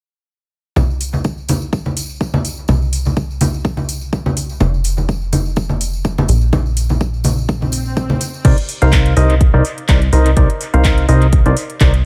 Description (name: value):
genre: piano house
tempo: 125 BPM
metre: 4/4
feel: swing 55% on 16ths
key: C minor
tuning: A4 = 440 Hz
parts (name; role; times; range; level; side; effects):
- plucky analog bass; bass; 0.8-12.0 s; F1 to C2; -18 LUFS; equal; sidechain pumping
- electronic kick drum; drums; 0.8-11.9 s; none; -17 LUFS; equal; high-pass filter on kick, studio ambience
- congas and tambourine; percussion; 0.8-8.4 s; none; -22 LUFS; equal; dub echo
- house drum kit; drums; 1.0-12.0 s; crash cymbal, handclaps, hi-hat; -25 LUFS; equal; studio ambience, dub echo
- swell; sound effects; 7.7-8.4 s; none; -30 LUFS; equal; none
- percussive organ stab; riff; 8.4-11.9 s; C3 to F5; -19 LUFS; equal; chorus, cassette tape, sidechain pumping, dub echo
room: little or no reverb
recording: echo-heavy mix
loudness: -15 LUFS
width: mono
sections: 0.8-8.4 A section; 8.4-12.1 B section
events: filter sweep on analog synth bass 0.8-8.4; swell 7.7-8.4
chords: 0.8 N.C.; 8.4 Cm9